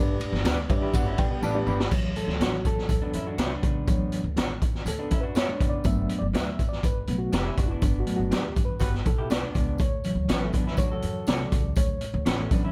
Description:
uptempo 1960s-style soul; 122 BPM; 4/4; straight; D major; A4 = 440 Hz
mellow reed electric piano; accompaniment; 0.0-12.7 s; C#3 to B5; -33 LUFS; equal; fast tremolo
electric guitar through a small old amp; riff; 0.0-12.7 s; G3 to A4; -37 LUFS; equal
upright bass; bass; 0.0-12.7 s; F1 to D3; -33 LUFS; equal
congas; percussion; 0.1-12.7 s; -45 LUFS; equal
raw garage drum kit; drums; 0.2-12.6 s; crash cymbal, hi-hat, kick drum, ride cymbal, snare drum; -29 LUFS; equal
tambourine; percussion; 0.2-12.6 s; -52 LUFS; equal
electric guitar through a small old amp; stabs; 0.4-12.4 s; A3 to D5; -38 LUFS; equal; analog chorus
mellow horn section; second line; 8.8-9.0 s; G3 to B4; -39 LUFS; equal
little or no reverb; dark, warm production; -26 LUFS; mono
0.0-1.9 A section; 1.9-12.7 B section
reed electric piano fill 0.5-1.9; drum fill 1.4-1.9; reed electric piano solo 1.9-12.7; band accent 7.8-9.8
0.0 G; 1.9 Dmaj7; 5.9 Gmaj7; 9.8 Dmaj7

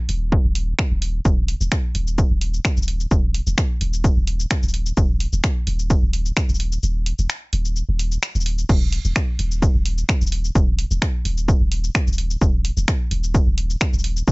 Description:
minimal techno; 129 BPM; 4/4; swing 53% on 16ths; A4 = 439 Hz
punchy sub bass; bass; 0.1-14.3 s; Eb1; -21 LUFS; equal; sidechain pumping
punchy analog drum machine; drums; 0.1-14.3 s; cabasa, crash cymbal, finger snaps, hi-hat; -26 LUFS; equal
electronic kick drum; drums; 0.3-14.3 s; -19 LUFS; equal
little or no reverb; nothing above 7.8 kHz; -18 LUFS; side -28 dB against mid
0.0-8.7 A section; 8.7-14.3 B section
break 6.8-8.7; drop 8.7-14.3

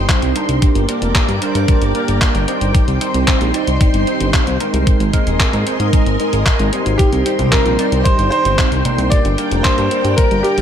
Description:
italo disco; 113 BPM; 4/4; straight; C minor; A4 = 440 Hz
string machine, full ensemble; sustained chords; 0.0-10.6 s; Eb4 to D6; -22 LUFS; equal; ensemble chorus
chorused polysynth; stabs; 0.0-10.6 s; G3 to D5; -20 LUFS; right 2 dB; phaser
fat analog bass; bass; 0.0-10.6 s; Eb1 to Ab2; -19 LUFS; equal
detuned 8-bit digital drum machine; drums; 0.1-10.6 s; congas, handclaps, hi-hat; -21 LUFS; equal; gated reverb
electronic kick drum; drums; 0.1-10.3 s; -14 LUFS; equal
clear concert grand piano; melody; 7.0-10.6 s; G4 to D5; -18 LUFS; right 1 dB; digital delay
light reverb; -12 LUFS; side -9 dB against mid
0.0-10.6 A section
0.0 Cm; 0.6 Gm; 2.7 Cm; 4.9 Abadd9; 7.0 Cm; 9.1 Gm

